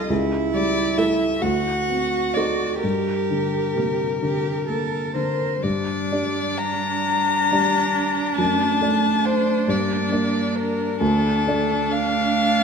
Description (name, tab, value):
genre	classical, slow romantic movement for piano quartet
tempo	41-47 BPM (dotted quarters)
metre	6/8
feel	rubato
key	G minor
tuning	A4 = 436 Hz
part	rich violin	melody	0.0-12.6 s	A4 to Bb5	-23 LUFS	left 6 dB	none
part	warm cello	second line	0.0-12.6 s	G3 to Bb4	-25 LUFS	right 8 dB	none
part	dark baby grand piano	accompaniment	0.0-12.6 s	C2 to D5	-24 LUFS	left 2 dB	none
part	clear viola	accompaniment	1.0-12.6 s	A3 to D4	-28 LUFS	right 7 dB	none
room	wet recital hall reverb, RT60 1.6 s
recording	none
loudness	-19 LUFS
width	side -6 dB against mid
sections	0.0-5.6 A section; 5.6-12.6 B section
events	none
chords	0.1 A7/C#; 1.4 D7b9; 2.8 Gm; 8.4 D/F#; 9.7 Gm; 11.0 Dm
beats	| 0.10 1.43 | 2.83 4.23 | 5.64 7.06 | 8.39 9.68 | 11.01 12.36